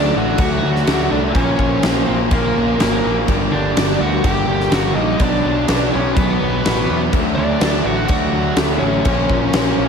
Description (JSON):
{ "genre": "quiet-loud alternative rock", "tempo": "125 BPM", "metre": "4/4", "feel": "straight", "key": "unclear", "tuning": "A4 = 440 Hz", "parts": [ { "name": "high-gain lead guitar", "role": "melody", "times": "0.0-9.9 s", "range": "Bb3 to G5", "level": "-21 LUFS", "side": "equal", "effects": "distortion, slapback echo" }, { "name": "crunchy overdriven guitar", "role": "riff", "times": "0.0-9.9 s", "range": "G2 to D4", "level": "-24 LUFS", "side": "right 11 dB", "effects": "slapback echo" }, { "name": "overdriven semi-hollow guitar", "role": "riff", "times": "0.0-9.9 s", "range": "G2 to D4", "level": "-23 LUFS", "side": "left 10 dB", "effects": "slapback echo" }, { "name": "thick fuzz guitar", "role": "riff", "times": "0.0-9.9 s", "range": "G2 to D4", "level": "-24 LUFS", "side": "right 1 dB", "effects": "distortion, slapback echo" }, { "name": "growling picked electric bass", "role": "bass", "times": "0.0-9.9 s", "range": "G1 to E2", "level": "-22 LUFS", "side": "equal", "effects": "overdrive" }, { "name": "huge arena drum kit", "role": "drums", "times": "0.4-9.6 s", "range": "crash cymbal, kick drum, snare drum", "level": "-19 LUFS", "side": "equal", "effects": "none" } ], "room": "moderate lush hall reverb, RT60 2.1 s", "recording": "big arena sound", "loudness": "-14 LUFS", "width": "side -6 dB against mid", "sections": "0.0-9.9 A section", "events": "none", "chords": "0.0 D; 1.4 Bbm; 3.3 Gm; 5.2 Bm; 7.1 D; 9.1 Bbm", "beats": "0.39 0.87 | 1.35 1.83 2.31 2.79 | 3.28 3.76 4.24 4.72 | 5.20 5.68 6.17 6.65 | 7.13 7.61 8.09 8.57 | 9.06 9.54" }